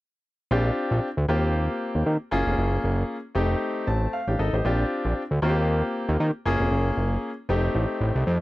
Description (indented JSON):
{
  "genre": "early-eighties boogie funk",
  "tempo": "116 BPM",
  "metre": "4/4",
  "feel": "swing 56% on 16ths",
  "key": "unclear",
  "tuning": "A4 = 440 Hz",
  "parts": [
    { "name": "clear grand piano", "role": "accompaniment", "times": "0.5-8.3 s", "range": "A3 to A5", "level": "-26 LUFS", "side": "left 1 dB", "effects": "none" },
    { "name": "fat analog bass", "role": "bass", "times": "0.5-8.4 s", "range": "F1 to Eb3", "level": "-23 LUFS", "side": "equal", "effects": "none" }
  ],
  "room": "little or no reverb",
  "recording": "none",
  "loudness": "-22 LUFS",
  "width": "side -18 dB against mid",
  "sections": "0.5-8.4 A section",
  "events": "grand piano fill 3.6-4.6",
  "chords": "0.5 Bb6; 1.3 Eb6; 2.3 Gbmaj7; 3.4 F7; 4.6 Bb6; 5.4 Eb6; 6.5 Gbmaj7; 7.5 F7",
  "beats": "| 0.51 1.03 1.54 2.06 | 2.58 3.10 3.61 4.13 | 4.65 5.16 5.68 6.20 | 6.72 7.23 7.75 8.27"
}